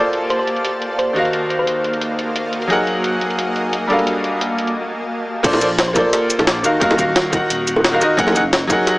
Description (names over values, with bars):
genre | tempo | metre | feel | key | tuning
liquid drum and bass | 175 BPM | 4/4 | straight | Bb major | A4 = 438 Hz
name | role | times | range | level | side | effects
bright concert grand piano | accompaniment | 0.0-9.0 s | Eb3 to Gb5 | -18 LUFS | equal | digital delay
shimmering ambient pad | sustained chords | 0.0-5.4 s | Bb3 to A5 | -24 LUFS | equal | chorus, built-in reverb, sidechain pumping
jungle sampler-style drum kit | drums | 0.1-8.9 s | crash cymbal, hi-hat, shaker, snare drum | -20 LUFS | equal | overdrive, low-pass filter on hats, low-pass filter on cymbals, low-pass filter on snare, low-pass filter on perc
thumb-piano-like synth pluck | melody | 0.3-1.8, 5.8-7.5 s | Gb4 to C5 | -24 LUFS | equal | chorus, digital delay
dark detuned saw bass | bass | 5.4-8.8 s | Eb1 to Bb1 | -25 LUFS | equal | none
electronic kick drum | drums | 5.4-8.8 s | none | -25 LUFS | equal | none
bongos | percussion | 5.5-8.8 s | none | -21 LUFS | equal | none
room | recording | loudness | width
light reverb, digital ambience | small speaker sound | -15 LUFS | side -21 dB against mid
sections
0.0-5.4 A section; 5.4-9.0 B section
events
break 4.8-5.4; drop 5.4-9.0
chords
0.0 Bbmaj9; 1.2 Ebmadd9; 2.7 Gb69; 3.9 Gm9; 5.4 Bbmaj9; 6.6 Ebmadd9; 8.2 Gb69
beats
0.30 0.64 0.98 | 1.33 1.67 2.01 2.36 | 2.70 3.04 3.38 3.73 | 4.07 4.41 4.76 5.10 | 5.44 5.79 6.13 6.47 | 6.81 7.16 7.50 7.84 | 8.19 8.53 8.87